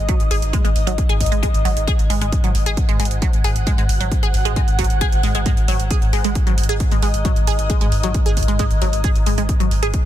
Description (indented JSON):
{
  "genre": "driving peak-time techno",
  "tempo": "134 BPM",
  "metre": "4/4",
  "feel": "straight",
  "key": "unclear",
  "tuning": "A4 = 440 Hz",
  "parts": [
    { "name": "saturated sub bass", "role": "bass", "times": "0.0-9.9 s", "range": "G#1", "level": "-21 LUFS", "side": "equal", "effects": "tube saturation, sidechain pumping, low-pass filter" },
    { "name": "swarming drone", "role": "drone", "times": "0.0-10.1 s", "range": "G#2", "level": "-28 LUFS", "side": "equal", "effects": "built-in reverb, sidechain pumping" },
    { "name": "granular cloud pad", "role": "texture", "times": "0.0-10.1 s", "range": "D#5 to G#5", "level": "-28 LUFS", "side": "left 2 dB", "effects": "built-in reverb, sidechain pumping" },
    { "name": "resonant blip pluck", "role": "riff", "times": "0.1-9.9 s", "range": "F#3 to G#4", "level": "-24 LUFS", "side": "right 1 dB", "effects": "phaser, sidechain pumping, ping-pong delay" },
    { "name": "electronic hi-hat", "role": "drums", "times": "0.1-10.0 s", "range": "none", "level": "-29 LUFS", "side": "right 5 dB", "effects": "sidechain pumping on hats" },
    { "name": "electronic kick drum", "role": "drums", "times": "0.1-10.0 s", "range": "none", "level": "-18 LUFS", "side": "equal", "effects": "none" }
  ],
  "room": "little or no reverb",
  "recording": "dense, heavily limited modern master",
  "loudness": "-15 LUFS",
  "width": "side -12 dB against mid",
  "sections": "0.0-10.1 A section",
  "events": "none",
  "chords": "0.0 G#5"
}